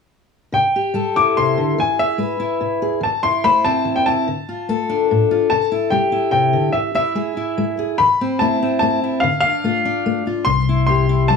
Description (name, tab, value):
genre	indie folk with a building arrangement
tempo	145 BPM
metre	3/4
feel	straight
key	unclear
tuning	A4 = 440 Hz
part	bright upright piano	melody	0.5-11.4 s	E5 to D6	-18 LUFS	left 2 dB	none
part	fingerpicked steel-string acoustic guitar	accompaniment	0.5-11.4 s	A2 to C5	-19 LUFS	left 2 dB	none
part	fingered electric bass	bass	10.5-11.4 s	C2	-16 LUFS	left 4 dB	none
room	moderate studio ambience, RT60 0.5 s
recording	studio ambience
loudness	-16 LUFS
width	side -5 dB against mid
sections	0.5-5.5 A section; 5.5-11.4 B section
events	none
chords	0.5 C6; 1.8 E; 3.0 Am/E; 4.3 Dm; 5.5 C6; 6.7 E; 8.0 Am/E; 9.2 Dm; 10.5 C